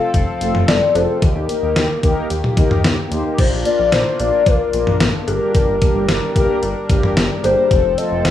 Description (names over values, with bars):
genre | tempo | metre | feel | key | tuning
synth-pop | 111 BPM | 4/4 | straight | Bb major | A4 = 440 Hz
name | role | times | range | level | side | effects
hollow clarinet-like synth lead | melody | 0.0-8.3 s | Bb4 to F5 | -18 LUFS | left 4 dB | chorus, phaser, slapback echo, plate reverb
mellow synth brass | accompaniment | 0.0-8.2 s | A3 to C5 | -23 LUFS | equal | chorus, plate reverb
chorused pulse-width pad | sustained chords | 0.0-8.3 s | Eb3 to Bb4 | -25 LUFS | left 1 dB | plate reverb
fat analog bass | bass | 0.1-8.3 s | F1 to Eb2 | -22 LUFS | equal | none
detuned 8-bit digital drum machine | drums | 0.1-8.3 s | cowbell, crash cymbal, hi-hat, kick drum, snare drum, toms | -18 LUFS | equal | none
room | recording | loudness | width
moderate studio reverb, RT60 0.5 s | rough home demo mix, studio reverb | -14 LUFS | side -11 dB against mid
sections
0.0-3.4 A section; 3.4-8.3 A section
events
none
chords
0.0 F; 1.2 Eb; 3.4 Bb; 5.3 Gm; 7.7 F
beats
0.14 0.68 | 1.22 1.76 2.30 2.84 | 3.38 3.92 4.46 5.01 | 5.55 6.09 6.63 7.17 | 7.71 8.25